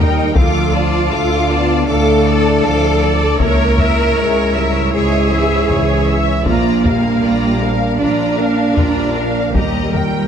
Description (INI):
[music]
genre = cinematic, epic orchestral film score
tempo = 79 BPM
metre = 4/4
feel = straight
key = unclear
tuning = A4 = 439 Hz
[part]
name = warm symphonic violin section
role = melody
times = 0.0-10.3 s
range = Db5 to D6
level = -25 LUFS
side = left 6 dB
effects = none
[part]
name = rich symphonic violin section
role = second line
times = 0.0-10.3 s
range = Db5 to G5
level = -25 LUFS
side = left 1 dB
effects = none
[part]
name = clear symphonic viola section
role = accompaniment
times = 0.0-10.3 s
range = F4 to Fb5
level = -22 LUFS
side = right 1 dB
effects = none
[part]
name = mellow French horn section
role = sustained chords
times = 0.0-10.3 s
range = Eb3 to B3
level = -21 LUFS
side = left 4 dB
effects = none
[part]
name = mellow trombone section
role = sustained chords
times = 0.0-10.3 s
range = Ab2 to Fb4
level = -22 LUFS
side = right 2 dB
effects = none
[part]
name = clear symphonic double bass section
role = bass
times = 0.0-10.2 s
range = Bb1 to Eb2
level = -18 LUFS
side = right 2 dB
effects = none
[part]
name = rich symphonic cello section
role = bass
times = 0.0-10.3 s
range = G3 to Bb4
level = -18 LUFS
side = right 1 dB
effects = none
[part]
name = taiko ensemble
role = drums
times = 0.4-10.3 s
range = none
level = -18 LUFS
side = left 2 dB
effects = none
[part]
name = cymbal swell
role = sound effects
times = 10.2-10.3 s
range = none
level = barely audible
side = none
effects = none
[sound]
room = moderate scoring stage reverb, RT60 2.0 s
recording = none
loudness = -12 LUFS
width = side -8 dB against mid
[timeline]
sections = 0.0-10.3 A section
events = drum fill 0.0-0.4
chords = 0.4 Dm; 3.4 Dbm; 6.5 Bb; 9.5 Eb